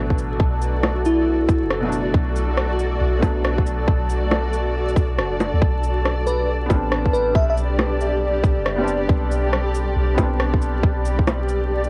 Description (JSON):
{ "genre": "future garage", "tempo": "138 BPM", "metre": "4/4", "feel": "swing 64% on 16ths", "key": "B phrygian", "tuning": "A4 = 440 Hz", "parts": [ { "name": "felt-muted upright piano", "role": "accompaniment", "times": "0.0-11.9 s", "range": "B2 to D4", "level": "-31 LUFS", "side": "equal", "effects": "sidechain pumping, tape echo" }, { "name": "granular cloud pad", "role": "sustained chords", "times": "0.0-11.9 s", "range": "F#4 to D5", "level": "-28 LUFS", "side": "equal", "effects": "built-in reverb, vintage 12-bit sampler grit, sidechain pumping" }, { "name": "soft 808-style bass", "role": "bass", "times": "0.0-11.9 s", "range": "F#1 to D2", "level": "-25 LUFS", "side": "equal", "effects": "sidechain pumping" }, { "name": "drifting glass-harmonics texture", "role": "texture", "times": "0.0-11.9 s", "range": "A4", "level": "-35 LUFS", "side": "equal", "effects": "chorus, built-in reverb" }, { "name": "electronic kick drum", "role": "drums", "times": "0.1-11.3 s", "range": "none", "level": "-21 LUFS", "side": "equal", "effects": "overdrive, cassette tape" }, { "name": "electronic shaker, rim click and bongos", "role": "drums", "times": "0.2-11.9 s", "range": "none", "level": "-26 LUFS", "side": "equal", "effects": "overdrive, cassette tape" }, { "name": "bell-like FM electric piano", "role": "melody", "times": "1.1-1.7, 6.3-7.5 s", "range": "E4 to E5", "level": "-26 LUFS", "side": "equal", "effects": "chorus, vintage 12-bit sampler grit, cassette tape, tape echo" } ], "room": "light reverb", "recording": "home recording on cassette, vinyl crackle", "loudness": "-20 LUFS", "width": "mono", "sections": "0.0-11.9 A section", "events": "none", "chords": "0.0 Bm7; 5.6 Csus2", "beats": "| 0.40 0.83 1.27 1.70 | 2.14 2.57 3.01 3.44 | 3.88 4.31 4.75 5.18 | 5.62 6.05 6.49 6.92 | 7.36 7.79 8.22 8.66 | 9.09 9.53 9.96 10.40 | 10.83 11.27 11.70" }